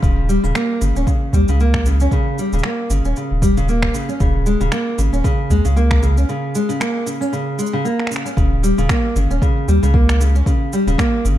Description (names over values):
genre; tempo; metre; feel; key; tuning
folktronica; 115 BPM; 4/4; swing 56% on 16ths; Eb mixolydian; A4 = 440 Hz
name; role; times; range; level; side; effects
fingerpicked steel-string acoustic guitar; arpeggios; 0.0-11.4 s; Db3 to Db4; -19 LUFS; equal; ping-pong delay
warm sub bass; bass; 0.0-11.4 s; Eb1 to Eb2; -16 LUFS; equal; none
electronic kick drum; drums; 0.0-11.1 s; none; -18 LUFS; equal; none
electronic shaker and finger snaps; drums; 0.0-11.4 s; none; -27 LUFS; right 1 dB; none
room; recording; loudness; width
little or no reverb; dark, warm production; -15 LUFS; side -12 dB against mid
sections
0.0-8.4 A section; 8.4-11.4 B section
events
break 6.3-8.4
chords
0.0 Eb7; 4.2 Db5/Eb; 8.4 Eb7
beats
| 0.03 0.55 1.07 1.59 | 2.12 2.64 3.16 3.68 | 4.20 4.73 5.25 5.77 | 6.29 6.81 7.33 7.86 | 8.38 8.90 9.42 9.94 | 10.46 10.99